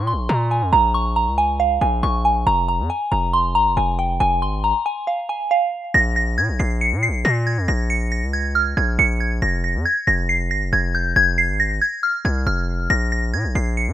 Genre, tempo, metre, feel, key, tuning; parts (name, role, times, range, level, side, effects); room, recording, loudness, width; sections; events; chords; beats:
hip hop, drill; 138 BPM; 4/4; half-time; F minor; A4 = 439 Hz
soft synth bell; melody; 0.0-13.9 s; F5 to Db7; -19 LUFS; right 1 dB; chorus, phaser
distorted 808-style bass; bass; 0.0-13.9 s; F1 to Bb2; -21 LUFS; equal; distortion
little or no reverb; rough home demo mix; -17 LUFS; side -12 dB against mid
0.0-5.9 A section; 5.9-13.9 B section
0.0 Bbm; 2.5 Fm; 5.9 Bbm; 9.4 Fm; 12.9 N.C.
0.29 | 0.73 1.16 1.60 2.03 | 2.47 2.90 3.33 3.77 | 4.21 4.64 5.07 5.51 | 5.94 6.38 6.81 7.25 | 7.68 8.12 8.55 8.99 | 9.42 9.86 10.29 10.73 | 11.16 11.60 12.03 12.47 | 12.90 13.34 13.77